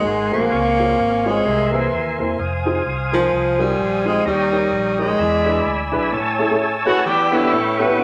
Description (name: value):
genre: gospel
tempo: 128 BPM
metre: 4/4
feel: swing 58% on 8ths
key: unclear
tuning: A4 = 440 Hz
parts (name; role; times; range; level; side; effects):
- breathy tenor saxophone; melody; 0.0-5.9 s; E3 to Bb3; -20 LUFS; equal; none
- tonewheel organ; sustained chords; 0.0-8.0 s; C4 to E6; -25 LUFS; equal; slow rotary speaker, overdrive
- warm upright piano; accompaniment; 0.1-8.0 s; Ab2 to B4; -25 LUFS; equal; none
- fingered electric bass; bass; 0.1-6.1 s; E1 to E2; -29 LUFS; equal; none
- clear saxophone section; melody; 6.9-8.0 s; B3 to B4; -20 LUFS; equal; none
room: moderate large studio reverb, RT60 0.8 s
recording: none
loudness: -18 LUFS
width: mono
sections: 0.0-6.1 A section; 6.1-8.0 B section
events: none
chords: 0.1 Ab9; 0.5 Dbmaj7; 1.5 C7alt; 2.4 Fm7; 4.3 Eb7; 5.2 E7; 6.1 Amaj7; 7.1 Em7; 7.5 A9